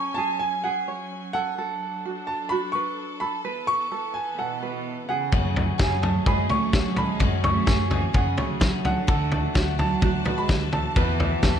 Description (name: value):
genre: indie folk with a building arrangement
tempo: 128 BPM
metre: 4/4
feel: straight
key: unclear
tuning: A4 = 440 Hz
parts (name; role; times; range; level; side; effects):
- warm upright piano; melody; 0.0-11.6 s; F#5 to C#6; -29 LUFS; right 1 dB; plate reverb
- warm chamber string section; sustained chords; 0.0-11.6 s; E3 to A5; -36 LUFS; left 2 dB; none
- tenor ukulele; arpeggios; 0.0-11.6 s; F#4 to C#5; -31 LUFS; right 6 dB; tape echo
- warm cello; second line; 4.4-11.6 s; B2 to A3; -30 LUFS; right 7 dB; none
- picked twelve-string acoustic guitar; accompaniment; 5.3-11.6 s; E2 to G#4; -30 LUFS; left 6 dB; none
- hollow-body short-scale fingered electric bass; bass; 5.3-11.6 s; D2 to F#3; -27 LUFS; equal; none
- loose indie drum kit; drums; 5.3-11.5 s; kick drum, snare drum, toms; -23 LUFS; left 1 dB; none
room: light reverb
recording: dark, warm production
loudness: -22 LUFS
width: side -9 dB against mid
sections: 0.0-11.6 A section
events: none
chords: 0.0 F#madd9; 1.6 D; 3.5 Esus4; 5.3 F#madd9; 9.1 D; 11.0 Esus4